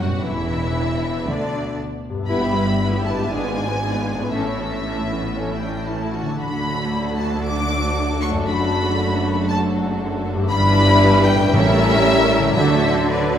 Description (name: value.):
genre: classical, dramatic, fast romantic movement for symphony orchestra.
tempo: 117 BPM.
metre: 4/4.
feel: straight.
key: D major.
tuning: A4 = 440 Hz.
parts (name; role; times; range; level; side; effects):
clear symphonic violin section; melody; 0.0-13.4 s; D5 to D6; -24 LUFS; left 2 dB; none.
warm symphonic violin section; second line; 0.0-13.3 s; A3 to E5; -26 LUFS; left 2 dB; none.
warm symphonic viola section; accompaniment; 0.0-13.4 s; D3 to G4; -26 LUFS; right 1 dB; none.
mellow French horn section; sustained chords; 0.0-13.4 s; D3 to E4; -25 LUFS; equal; none.
concert harp; arpeggios; 0.0-13.4 s; F#2 to B4; -26 LUFS; left 3 dB; none.
clear symphonic cello section; bass; 0.0-13.4 s; D2 to D3; -25 LUFS; right 2 dB; none.
rich symphonic double bass section; bass; 0.0-13.4 s; E1 to D2; -25 LUFS; right 2 dB; none.
timpani; percussion; 11.5-13.3 s; A2 to D3; -23 LUFS; right 1 dB; none.
room: wet recital hall reverb, RT60 1.4 s.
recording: recorded in a church or concert hall.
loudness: -17 LUFS.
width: side -9 dB against mid.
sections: 0.0-13.4 A section.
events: none.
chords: 0.2 Bm; 2.3 Em/G; 3.3 G#dim7; 4.3 A; 6.4 D; 8.5 D/F#; 10.5 Em7/G; 11.5 A7b9; 12.6 D.